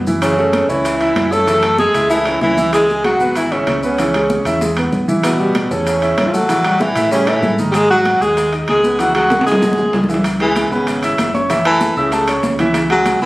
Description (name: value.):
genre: Afro-Cuban jazz.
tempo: 192 BPM.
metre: 4/4.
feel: straight.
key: C# minor.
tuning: A4 = 442 Hz.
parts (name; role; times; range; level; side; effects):
sub bass with octave; bass; 0.0-13.3 s; F#1 to A2; -25 LUFS; equal; none.
warm baby grand piano; accompaniment; 0.1-13.3 s; D#3 to E6; -19 LUFS; right 1 dB; none.
bongos; percussion; 0.1-13.2 s; none; -29 LUFS; left 2 dB; none.
congas; percussion; 0.1-13.3 s; none; -23 LUFS; equal; none.
maracas; percussion; 0.1-13.3 s; none; -34 LUFS; left 1 dB; none.
breathy tenor saxophone; melody; 0.2-10.1 s; B3 to A4; -16 LUFS; equal; none.
breathy baritone saxophone; second line; 0.2-13.3 s; B2 to A3; -19 LUFS; left 1 dB; none.
timbales; percussion; 0.2-13.2 s; none; -23 LUFS; right 1 dB; none.
room: wet club reverb, RT60 0.5 s.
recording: recorded on a phone in the room, studio reverb.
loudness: -13 LUFS.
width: side -19 dB against mid.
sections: 0.0-10.2 A section; 10.2-13.3 B section.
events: drum fill 4.6-5.2, 9.0-10.2; baritone saxophone solo 10.2-13.3.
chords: 0.2 F#m7; 2.7 C#m7; 5.2 A7; 7.7 G#5; 9.0 C#m; 9.6 C#madd11/G#; 10.2 C#m7; 11.5 F#m7; 12.7 C#m.